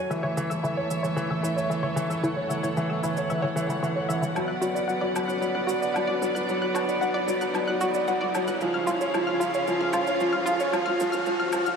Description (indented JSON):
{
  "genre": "piano and strings electronica",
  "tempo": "113 BPM",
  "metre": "4/4",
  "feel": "straight",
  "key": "unclear",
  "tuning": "A4 = 440 Hz",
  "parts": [
    { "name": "warm studio string section", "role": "sustained chords", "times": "0.0-11.8 s", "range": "C#3 to F#5", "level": "-31 LUFS", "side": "right 1 dB", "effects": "none" },
    { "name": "dark upright piano", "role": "riff", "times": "0.0-11.8 s", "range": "E3 to D5", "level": "-26 LUFS", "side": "equal", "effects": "digital delay" },
    { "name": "round analog bass", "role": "bass", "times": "0.0-11.8 s", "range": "none", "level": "barely audible", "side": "none", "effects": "none" },
    { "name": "riser", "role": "sound effects", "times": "0.0-11.8 s", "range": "none", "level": "-36 LUFS", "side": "right 2 dB", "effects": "none" },
    { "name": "analog pluck", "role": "arpeggios", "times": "0.1-11.7 s", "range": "E4 to F#6", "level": "-30 LUFS", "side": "equal", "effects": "chorus, digital delay" },
    { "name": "shaker and woodblock", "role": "drums", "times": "0.1-11.8 s", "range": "none", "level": "-37 LUFS", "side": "equal", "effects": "overdrive" }
  ],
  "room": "wet lush hall reverb, RT60 2.4 s",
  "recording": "high-pass filter",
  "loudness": "-24 LUFS",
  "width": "side -6 dB against mid",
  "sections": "0.0-11.8 A section",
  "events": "build-up 0.0-11.8; riser 0.0-11.8; filter sweep on synth arpeggio sound 0.0-11.8",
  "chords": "0.1 A; 4.4 Bm; 8.6 C#"
}